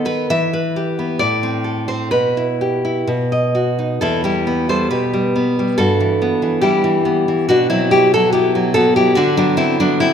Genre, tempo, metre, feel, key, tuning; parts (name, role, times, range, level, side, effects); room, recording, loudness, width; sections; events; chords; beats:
romantic piece for solo classical guitar; 60-73 BPM; 2/4; rubato; E minor; A4 = 440 Hz
nylon-string guitar; solo; 0.0-10.1 s; E2 to E5; -14 LUFS; equal
moderate concert hall reverb, RT60 1.9 s; minimal, uncompressed stereo recording; -14 LUFS; side -8 dB against mid
0.0-4.0 A section; 4.0-10.1 B section
0.3 Em; 1.2 Am; 2.1 Em/B; 3.1 B; 4.0 Em; 5.8 Em/G; 7.5 B5; 9.2 Bm/D
| 0.31 1.21 | 2.13 3.08 | 4.02 4.92 | 5.79 6.64 | 7.49 8.34 | 9.17 10.02